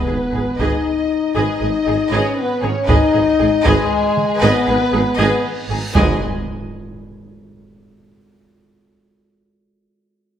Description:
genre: cinematic, epic orchestral film score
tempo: 78 BPM (dotted quarters)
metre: 12/8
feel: straight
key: G# minor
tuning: A4 = 440 Hz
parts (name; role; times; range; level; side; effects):
- dark symphonic violin section; melody; 0.0-6.2 s; G#4 to G#5; -26 LUFS; left 3 dB; none
- clear symphonic violin section; second line; 0.0-6.2 s; D#4 to D#5; -25 LUFS; left 2 dB; none
- rich symphonic viola section; accompaniment; 0.0-6.2 s; G#4; -24 LUFS; right 1 dB; none
- dark French horn section; sustained chords; 0.0-6.2 s; G#3 to D#4; -18 LUFS; left 3 dB; none
- impact and reverse cymbal; sound effects; 0.0-9.0 s; none; -31 LUFS; right 1 dB; none
- mellow tuba; bass; 0.1-6.2 s; G#1; -25 LUFS; right 4 dB; none
- rich symphonic cello section; bass; 0.1-6.2 s; G#2; -25 LUFS; right 3 dB; none
- rich symphonic double bass section; bass; 0.1-6.2 s; G#1; -25 LUFS; right 3 dB; none
- taiko ensemble; drums; 0.6-6.9 s; none; -21 LUFS; right 1 dB; none
- timpani; percussion; 6.0-6.2 s; G#2; -31 LUFS; equal; none
room: moderate recital hall reverb, RT60 1.6 s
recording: none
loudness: -14 LUFS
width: side -9 dB against mid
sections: 0.0-6.0 A section; 6.0-9.0 B section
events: impact 0.0-2.9, 6.0-9.0; reverse cymbal 5.4-6.0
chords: 0.0 G#m; 6.0 N.C.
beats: 0.59 1.36 2.12 | 2.89 3.66 4.42 5.19 | 5.96 6.72 7.49 8.26

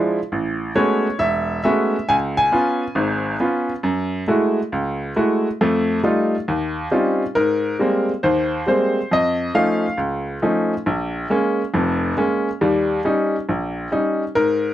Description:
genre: solo jazz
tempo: 137 BPM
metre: 4/4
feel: swing 66% on 8ths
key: Ab major from 7.4 s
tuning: A4 = 440 Hz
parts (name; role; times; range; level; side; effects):
- bright upright piano; solo; 0.0-14.7 s; E1 to G#5; -18 LUFS; equal; none
room: moderate club reverb, RT60 0.5 s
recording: dark, warm production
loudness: -18 LUFS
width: side -12 dB against mid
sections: 0.0-7.4 A section; 7.4-14.7 B section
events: none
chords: 0.3 Amaj13; 2.1 C#7; 3.8 F#m9; 5.6 F9; 6.5 D#13; 7.4 Abmaj9; 9.1 Faug7; 10.9 Bbm7; 12.6 Eb7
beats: | 0.32 0.76 1.20 1.64 | 2.08 2.52 2.96 3.40 | 3.84 4.28 4.72 5.16 | 5.60 6.04 6.48 6.92 | 7.36 7.79 8.23 8.67 | 9.11 9.55 9.99 10.42 | 10.86 11.30 11.74 12.18 | 12.61 13.05 13.49 13.92 | 14.36

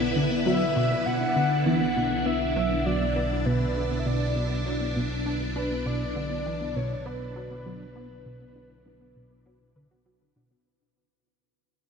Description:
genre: ambient, sequencer-driven space music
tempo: 100 BPM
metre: 4/4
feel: straight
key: B minor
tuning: A4 = 441 Hz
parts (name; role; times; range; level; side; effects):
- breathy flute-like synth lead; melody; 0.0-10.1 s; B4 to F#5; -31 LUFS; equal; analog chorus, ping-pong delay
- phased string machine; sustained chords; 0.0-10.7 s; D3 to B4; -29 LUFS; equal; ensemble chorus, phaser
- soft round pluck; arpeggios; 0.0-10.7 s; B3 to B4; -34 LUFS; moving between left 5 dB and right 3 dB; chorus, auto-pan, vintage 12-bit sampler grit, ping-pong delay
- analog drone; bass; 0.0-10.6 s; B1; -34 LUFS; equal; chorus, tube saturation
- plucky analog bass; riff; 0.2-10.5 s; B2 to D4; -29 LUFS; left 1 dB; ensemble chorus, ping-pong delay
room: wet huge ambient reverb, RT60 8.5 s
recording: none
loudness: -24 LUFS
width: side -6 dB against mid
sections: 0.0-10.7 A section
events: fade-out 1.1-10.7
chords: 0.0 Bm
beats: 0.46 | 1.06 1.66 2.26 2.86 | 3.46 4.06 4.66 5.26 | 5.86 6.46 7.06 7.66 | 8.26 8.86 9.46 10.06

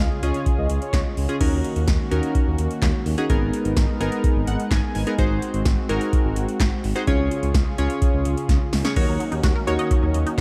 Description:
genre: synth-pop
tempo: 127 BPM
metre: 4/4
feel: straight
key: Eb minor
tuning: A4 = 440 Hz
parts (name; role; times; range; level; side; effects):
- warm analog pad; sustained chords; 0.0-10.4 s; Db3 to Bb4; -31 LUFS; equal; chorus
- smooth synth bass; bass; 0.0-10.4 s; Ab1 to Eb2; -26 LUFS; equal; none
- mellow synth brass; second line; 0.2-1.0 s; Db5 to Eb5; -35 LUFS; equal; chorus, digital delay
- warm analog keys; accompaniment; 0.2-10.2 s; Cb4 to Ab5; -28 LUFS; equal; chorus
- electro analog drum machine; drums; 0.2-10.4 s; crash cymbal, handclaps, hi-hat, kick drum, snare drum; -24 LUFS; equal; overdrive
- resonant blip pluck; arpeggios; 9.0-10.4 s; Gb3 to Eb5; -32 LUFS; equal; chorus, phaser, digital delay
room: light reverb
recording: dark, warm production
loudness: -21 LUFS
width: mono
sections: 0.0-1.4 A section; 1.4-10.4 B section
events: synth keys fill 4.2-5.2; drum fill 8.5-9.0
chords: 0.0 Db; 1.4 Ebm7; 3.3 Abmadd9; 5.2 Ab7; 7.1 Db; 9.0 Ebm7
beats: 0.46 0.93 | 1.41 1.88 2.35 2.82 | 3.30 3.77 4.24 4.71 | 5.19 5.66 6.13 6.60 | 7.08 7.55 8.02 8.49 | 8.96 9.44 9.91 10.38

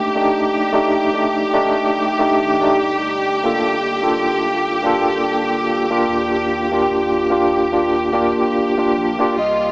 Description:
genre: trip hop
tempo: 73 BPM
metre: 4/4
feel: swing 58% on 16ths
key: unclear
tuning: A4 = 440 Hz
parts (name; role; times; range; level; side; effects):
- barky tine electric piano; accompaniment; 0.0-9.4 s; A3 to A4; -19 LUFS; equal; tremolo, vintage 12-bit sampler grit, tape echo
- bright studio violin section; sustained chords; 0.0-9.7 s; F4 to G4; -22 LUFS; equal; vintage 12-bit sampler grit
- warm sub bass; bass; 0.0-9.7 s; Eb1 to Eb2; -41 LUFS; equal; none
- pure breathy sine lead; melody; 9.4-9.7 s; Eb5; -19 LUFS; equal; phaser, subtle chorus
room: wet huge ambient reverb, RT60 8.0 s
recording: dreamy mix soaked in reverb, small speaker sound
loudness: -18 LUFS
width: mono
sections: 0.0-9.7 A section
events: none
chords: 0.0 F13; 2.8 Gm7; 6.1 Ebmaj7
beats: 0.33 1.15 1.97 | 2.79 3.61 4.43 5.26 | 6.08 6.90 7.72 8.54 | 9.37

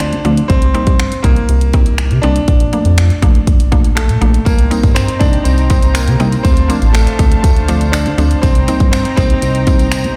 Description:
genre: dance-pop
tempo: 121 BPM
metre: 4/4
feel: straight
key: C dorian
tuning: A4 = 441 Hz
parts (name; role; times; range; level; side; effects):
- clear concert grand piano; melody; 0.0-10.2 s; A3 to D4; -21 LUFS; equal; digital delay
- mallet-like synth pluck; accompaniment; 0.0-10.1 s; F3 to F4; -23 LUFS; equal; chorus, sidechain pumping
- chorused synth bass; bass; 0.0-10.1 s; A1 to D3; -16 LUFS; equal; sidechain pumping
- pop drum kit; drums; 0.0-10.2 s; finger snaps, hi-hat, kick drum; -16 LUFS; equal; none
- soft supersaw; sustained chords; 4.5-10.2 s; D4 to Bb5; -27 LUFS; equal; sidechain pumping
- tambourine; percussion; 4.5-10.0 s; none; -34 LUFS; equal; none
room: digital ambience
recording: played on a big sound system in a bare room, large studio reverb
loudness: -12 LUFS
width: mono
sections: 0.0-10.2 A section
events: none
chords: 0.5 Cm7; 2.5 Bbmaj7; 4.5 Cm7; 6.4 Dm7; 8.4 Cm7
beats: 0.00 | 0.50 0.99 1.49 1.99 | 2.48 2.98 3.47 3.97 | 4.47 4.96 5.46 5.95 | 6.45 6.95 7.44 7.94 | 8.43 8.93 9.42 9.92

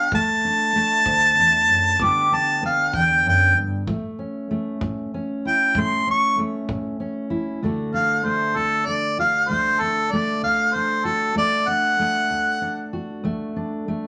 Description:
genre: acoustic country blues, solo or duo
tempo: 64 BPM (dotted quarters)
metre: 12/8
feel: straight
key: D major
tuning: A4 = 440 Hz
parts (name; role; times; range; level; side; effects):
- clear harmonica; melody; 0.0-12.9 s; A4 to D6; -20 LUFS; equal; none
- fingerpicked steel-string acoustic guitar; accompaniment; 0.0-14.1 s; D2 to G4; -28 LUFS; equal; none
- kick drum; drums; 0.1-6.8 s; none; -36 LUFS; equal; none
room: wet studio reverb, RT60 0.7 s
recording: none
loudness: -21 LUFS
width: mono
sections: 0.0-7.6 A section; 7.6-14.1 B section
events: harmonica solo 7.6-14.1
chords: 0.1 D; 2.0 G; 3.9 A; 7.6 D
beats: | 0.12 1.05 1.99 2.93 | 3.87 4.80 5.74 6.68 | 7.62 8.56 9.49 10.43 | 11.37 12.30 13.24

